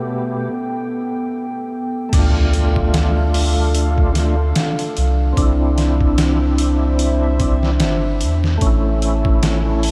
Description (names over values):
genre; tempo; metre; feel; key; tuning
trip hop; 74 BPM; 4/4; swing 56% on 16ths; D dorian; A4 = 440 Hz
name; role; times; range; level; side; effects
percussive tonewheel organ; accompaniment; 0.0-9.9 s; B2 to G4; -24 LUFS; equal; overdrive, chorus vibrato, slow rotary speaker, tremolo, tape echo
dark analog pad; sustained chords; 0.0-9.9 s; B3 to A5; -27 LUFS; equal; chorus, phaser, vintage 12-bit sampler grit
soft dub sub bass; bass; 2.1-9.9 s; G1 to E2; -19 LUFS; equal; none
trip hop sampler-style drum kit; drums; 2.1-9.9 s; crash cymbal, hi-hat, kick drum, snare drum; -23 LUFS; equal; studio reverb
impact; sound effects; 2.1-5.4 s; none; -28 LUFS; equal; none
room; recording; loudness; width
moderate huge ambient reverb, RT60 7.2 s; dreamy mix soaked in reverb; -17 LUFS; mono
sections
0.0-2.1 A section; 2.1-9.9 B section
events
impact 2.1-5.4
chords
0.0 Gadd9/B; 2.1 Dm; 5.4 Cadd9; 8.6 A